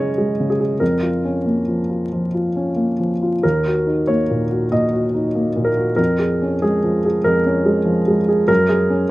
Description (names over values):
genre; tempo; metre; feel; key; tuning
neoclassical minimalist piano; 94 BPM; 4/4; uneven beats, rubato; Eb minor; A4 = 440 Hz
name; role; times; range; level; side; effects
warm grand piano; solo; 0.0-9.1 s; Eb2 to Eb5; -16 LUFS; equal; none
room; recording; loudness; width
little or no reverb; recorded outdoors, with no room sound, vinyl crackle; -16 LUFS; side -18 dB against mid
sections
0.0-9.1 A section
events
none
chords
0.0 Gbadd9; 0.8 Bbm/F; 3.4 Ebm; 6.0 Db6/F; 8.5 Gbadd9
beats
0.17 | 0.80 1.45 2.11 2.77 | 3.43 4.08 4.71 5.35 | 5.98 6.63 7.26 7.87 | 8.49 9.10